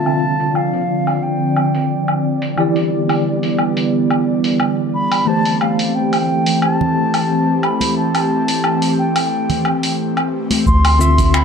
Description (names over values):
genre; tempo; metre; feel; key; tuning
sunset chillout; 89 BPM; 4/4; swing 54% on 16ths; D dorian; A4 = 441 Hz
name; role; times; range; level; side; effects
mellow baroque flute; melody; 0.0-11.4 s; F5 to C6; -20 LUFS; equal; ping-pong delay
tine electric piano; accompaniment; 0.0-11.4 s; D3 to F5; -21 LUFS; left 1 dB; overdrive, fast stereo tremolo, auto-pan
airy breathy pad; sustained chords; 0.0-11.4 s; D3 to E5; -18 LUFS; right 1 dB; chorus
dusty soul sampler-style drum kit; drums; 0.1-11.4 s; finger snaps, hi-hat, shaker, woodblock; -21 LUFS; equal; overdrive, low-pass filter on perc, low-pass filter on snare, low-pass filter on hats, low-pass filter on room
congas; percussion; 6.8-10.6 s; none; -23 LUFS; right 2 dB; none
round analog bass; bass; 10.7-11.4 s; D2; -13 LUFS; equal; tube saturation
electronic kick drum; drums; 10.7-11.3 s; none; -17 LUFS; equal; none
room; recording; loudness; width
wet lush hall reverb, RT60 2.6 s; dark, warm production; -14 LUFS; side -6 dB against mid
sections
0.0-10.7 A section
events
filter sweep on drum 0.0-10.7; filter sweep on analog synth pad 0.0-10.7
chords
0.0 Dm7; 2.6 Em7; 5.3 Am7; 10.7 Dm9